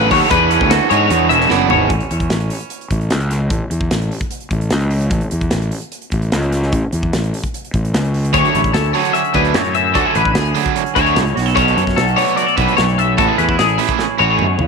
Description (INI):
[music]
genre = math rock and midwest emo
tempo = 149 BPM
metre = 4/4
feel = straight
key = A major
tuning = A4 = 440 Hz
[part]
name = twangy electric guitar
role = accompaniment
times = 0.0-3.5, 8.3-14.7 s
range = F#2 to A4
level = -20 LUFS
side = right 13 dB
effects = spring reverb
[part]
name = twelve-string electric guitar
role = arpeggios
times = 0.0-1.9, 8.3-14.6 s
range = G#4 to E5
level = -16 LUFS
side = left 14 dB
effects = lush chorus, tape echo
[part]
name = overdriven electric guitar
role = riff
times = 0.0-1.9, 8.3-14.5 s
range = B2 to A4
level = -19 LUFS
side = right 15 dB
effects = none
[part]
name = fuzz fingered electric bass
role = bass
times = 0.0-14.7 s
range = E1 to G#2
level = -18 LUFS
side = equal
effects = overdrive
[part]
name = modern studio drum kit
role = drums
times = 0.1-14.7 s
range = hi-hat, kick drum, snare drum, toms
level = -22 LUFS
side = equal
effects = none
[sound]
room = light reverb, small room ambience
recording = 1960s-style stereo with parts hard left and right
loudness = -13 LUFS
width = side -5 dB against mid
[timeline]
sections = 0.0-1.9 A section; 1.9-14.7 B section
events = drum fill 1.5-1.9, 14.0-14.7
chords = 0.3 E13; 1.9 A; 8.3 Dmaj9#11; 11.4 Bm9; 13.2 Amaj9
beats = | 0.31 0.70 1.10 1.50 | 1.90 2.31 2.71 3.11 | 3.51 3.91 4.31 4.71 | 5.12 5.52 5.92 6.32 | 6.73 7.13 7.53 7.93 | 8.34 8.74 9.14 9.55 | 9.95 10.36 10.76 11.16 | 11.57 11.97 12.37 12.78 | 13.18 13.58 13.99 14.39